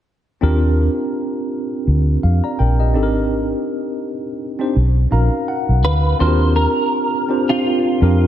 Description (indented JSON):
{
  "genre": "R&B",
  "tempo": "83 BPM",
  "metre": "4/4",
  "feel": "swing 57% on 16ths",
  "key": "Eb major",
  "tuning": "A4 = 441 Hz",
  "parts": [
    { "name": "tine electric piano", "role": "accompaniment", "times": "0.4-8.3 s", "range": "C4 to Bb5", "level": "-19 LUFS", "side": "equal", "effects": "fast stereo tremolo" },
    { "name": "vintage muted fingered electric bass", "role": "bass", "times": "0.4-8.3 s", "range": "Ab1 to F2", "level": "-15 LUFS", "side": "equal", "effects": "none" },
    { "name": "clean electric guitar", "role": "melody", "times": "5.8-8.3 s", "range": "F4 to C5", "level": "-20 LUFS", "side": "right 1 dB", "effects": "ensemble chorus" }
  ],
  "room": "light reverb",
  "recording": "none",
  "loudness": "-15 LUFS",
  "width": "side -11 dB against mid",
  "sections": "0.4-6.2 A section; 6.2-8.3 B section",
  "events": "tine electric piano fill 4.8-6.2",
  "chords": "0.4 Ebmaj9; 2.9 Abmaj9; 4.8 Bmaj9; 6.2 Ebmaj9",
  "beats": "| 0.41 1.14 1.86 2.58 | 3.31 4.03 4.75 5.47 | 6.20 6.92 7.64"
}